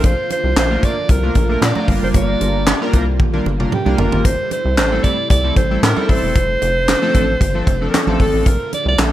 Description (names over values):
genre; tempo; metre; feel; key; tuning
early-eighties boogie funk; 114 BPM; 4/4; straight; G dorian; A4 = 438 Hz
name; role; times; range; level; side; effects
breathy alto saxophone; melody; 0.0-9.1 s; G4 to D5; -20 LUFS; right 1 dB; plate reverb
chorused polysynth; accompaniment; 0.0-8.5 s; F3 to Bb4; -21 LUFS; equal; plate reverb
string machine, full ensemble; sustained chords; 0.0-9.1 s; C3 to F4; -28 LUFS; equal; none
rubbery square bass; bass; 0.0-9.1 s; E1 to Bb2; -19 LUFS; equal; none
tight funk drum kit; drums; 0.0-9.1 s; handclaps, hi-hat, kick drum, snare drum, toms; -17 LUFS; equal; gated reverb
congas; percussion; 0.0-9.1 s; none; -28 LUFS; right 11 dB; none
room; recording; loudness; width
light reverb; none; -13 LUFS; side -13 dB against mid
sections
0.0-9.1 A section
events
drum fill 3.2-4.2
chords
0.0 Bbmaj7; 1.9 Gm7; 4.2 Am7; 6.4 F6; 8.5 Bbmaj7